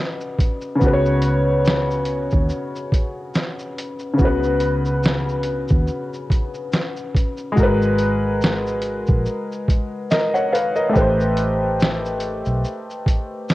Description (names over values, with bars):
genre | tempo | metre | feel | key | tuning
lo-fi hip hop | 71 BPM | 4/4 | swing 56% on 16ths | unclear | A4 = 440 Hz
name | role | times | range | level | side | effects
warm upright piano | accompaniment | 0.0-13.5 s | C#3 to F#5 | -20 LUFS | left 1 dB | low-pass filter, cassette tape
lo-fi sampler-style drum kit | drums | 0.2-13.5 s | hi-hat, kick drum, shaker, snare drum | -20 LUFS | equal | cassette tape
vintage muted fingered electric bass | bass | 0.8-12.6 s | G#1 to D#2 | -23 LUFS | equal | none
room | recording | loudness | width
moderate spring reverb, RT60 2.4 s | home recording on cassette | -18 LUFS | side -17 dB against mid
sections
0.0-7.6 A section; 7.6-13.5 B section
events
none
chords
0.0 C#9sus4; 7.6 G#m9; 11.0 Am9